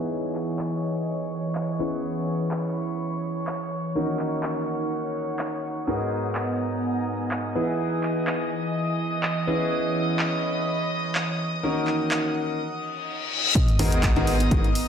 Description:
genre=piano house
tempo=125 BPM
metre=4/4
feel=swing 54% on 16ths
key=G# minor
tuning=A4 = 441 Hz
part: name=dark studio violin section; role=sustained chords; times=0.0-14.9 s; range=C#5 to D#6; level=-32 LUFS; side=equal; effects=vintage 12-bit sampler grit, sidechain pumping, low-pass filter
part: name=bright concert grand piano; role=riff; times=0.0-14.6 s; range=G#2 to B4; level=-27 LUFS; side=equal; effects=wide subtle chorus, sidechain pumping, low-pass filter, analog delay
part: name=downlifter, reverse cymbal and sub drop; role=sound effects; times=0.0-2.0, 13.1-14.9 s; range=none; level=-27 LUFS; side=left 2 dB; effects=none
part: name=airy breathy pad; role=texture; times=0.0-14.9 s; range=E3 to B5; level=-30 LUFS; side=right 1 dB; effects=chorus, sidechain pumping
part: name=punchy analog drum machine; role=drums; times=0.4-14.9 s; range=handclaps, hi-hat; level=-31 LUFS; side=equal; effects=none
part: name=electronic kick drum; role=drums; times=13.6-14.6 s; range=none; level=-22 LUFS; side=equal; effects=none
part: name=organ-like FM bass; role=bass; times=13.8-14.6 s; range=G#1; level=-24 LUFS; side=equal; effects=sidechain pumping
room=moderate plate reverb, RT60 1.2 s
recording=dreamy mix soaked in reverb, low-pass filter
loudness=-23 LUFS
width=side -8 dB against mid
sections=0.0-13.6 A section; 13.6-14.9 B section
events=filter sweep on grand piano 0.0-13.6; filter sweep on violin section 0.0-13.6; filter sweep 0.0-13.6; reverse cymbal 13.1-13.6; drop 13.6-14.9; impact 13.6-14.9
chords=0.0 Emaj7; 1.8 C#m7/E; 4.0 D#m7; 5.9 G#m9; 7.6 Emaj7; 9.5 C#m7/E; 11.6 D#m7; 13.6 G#m9

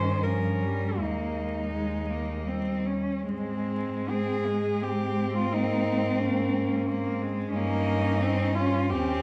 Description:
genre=classical, lyrical piece for cello ensemble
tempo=70-92 BPM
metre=3/4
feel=rubato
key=unclear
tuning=A4 = 440 Hz
part: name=rich cello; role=melody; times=0.0-9.2 s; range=C4 to C5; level=-34 LUFS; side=equal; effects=none
part: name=warm cello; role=second line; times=0.0-9.2 s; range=G3 to Db4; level=-36 LUFS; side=equal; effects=none
part: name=rich cello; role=accompaniment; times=0.0-9.2 s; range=Eb3 to Db4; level=-33 LUFS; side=equal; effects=none
part: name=dark cello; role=bass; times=0.0-9.2 s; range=Eb2 to Ab2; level=-33 LUFS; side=equal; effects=none
room=wet recital hall reverb, RT60 1.5 s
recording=vinyl crackle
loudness=-28 LUFS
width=mono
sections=0.0-9.2 A section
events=none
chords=0.0 Eb7/G; 1.0 Ebsus4; 2.5 Eb; 3.3 Ab; 5.5 Bbm7/Ab; 7.6 Eb7/G

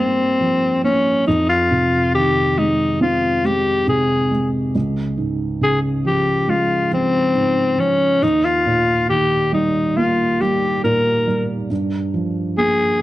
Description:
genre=pop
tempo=69 BPM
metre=4/4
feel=straight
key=F minor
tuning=A4 = 439 Hz
part: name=growling alto saxophone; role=melody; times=0.0-13.0 s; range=C4 to Bb4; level=-17 LUFS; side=left 2 dB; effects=none
part: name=felt-muted upright piano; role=accompaniment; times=0.0-13.0 s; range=Db2 to C4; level=-20 LUFS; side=right 2 dB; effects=none
room=small room ambience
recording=dry, close 1970s-style studio recording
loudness=-15 LUFS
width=side -16 dB against mid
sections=0.0-13.0 A section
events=none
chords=0.0 Gm7b5; 1.3 Fm7; 4.7 Db; 8.2 Eb; 11.7 Gm7

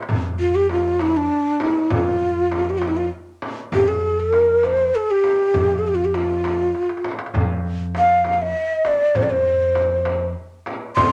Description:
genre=Arabic maqam ensemble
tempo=66 BPM (dotted quarters)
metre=6/8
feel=straight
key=F maqam rast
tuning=A4 = 440 Hz
part: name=darbuka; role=percussion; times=0.0-11.1 s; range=none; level=-32 LUFS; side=equal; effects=none
part: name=upright bass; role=bass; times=0.1-11.1 s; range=F2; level=-29 LUFS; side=equal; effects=none
part: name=frame drum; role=percussion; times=0.1-11.1 s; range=none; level=-32 LUFS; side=equal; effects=none
part: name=breathy mellow ney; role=melody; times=0.4-11.1 s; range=D4 to C6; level=-20 LUFS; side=equal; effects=none
room=moderate club reverb, RT60 0.9 s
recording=none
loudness=-20 LUFS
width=mono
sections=0.1-11.1 A section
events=drum fill 6.7-7.3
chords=none

